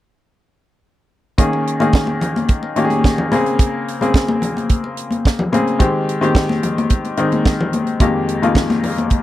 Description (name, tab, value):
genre	disco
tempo	109 BPM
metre	4/4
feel	straight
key	Bb dorian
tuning	A4 = 437 Hz
part	clear grand piano	accompaniment	1.4-9.2 s	F2 to Ab4	-17 LUFS	left 2 dB	none
part	tight funk drum kit	drums	1.4-9.2 s	hi-hat, kick drum, snare drum	-16 LUFS	right 1 dB	none
part	congas	percussion	1.5-9.1 s	none	-21 LUFS	left 2 dB	none
room	little or no reverb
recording	dry, close 1970s-style studio recording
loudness	-15 LUFS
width	side -14 dB against mid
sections	1.4-9.2 A section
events	none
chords	1.4 Eb7sus4; 3.3 Bbm9; 5.8 Abmaj7; 8.0 Fm11